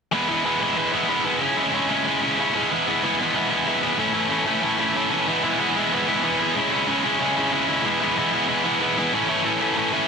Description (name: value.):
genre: punk.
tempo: 187 BPM.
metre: 4/4.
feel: straight.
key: E major.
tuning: A4 = 439 Hz.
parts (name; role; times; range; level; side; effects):
tight distorted guitar; riff; 0.1-10.1 s; A2 to E4; -19 LUFS; equal; distortion.
room: light reverb.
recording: dense, heavily limited modern master.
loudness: -19 LUFS.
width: side -5 dB against mid.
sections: 0.1-5.3 A section; 5.3-10.1 B section.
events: none.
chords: 0.1 E; 1.4 C#m; 2.7 E; 4.0 A; 5.3 E; 6.6 C#m; 7.8 E; 9.1 A.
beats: | 0.12 0.45 0.77 1.09 | 1.41 1.74 2.06 2.38 | 2.70 3.02 3.35 3.67 | 3.99 4.31 4.63 4.96 | 5.28 5.60 5.92 6.24 | 6.56 6.88 7.20 7.53 | 7.84 8.17 8.49 8.81 | 9.13 9.45 9.77.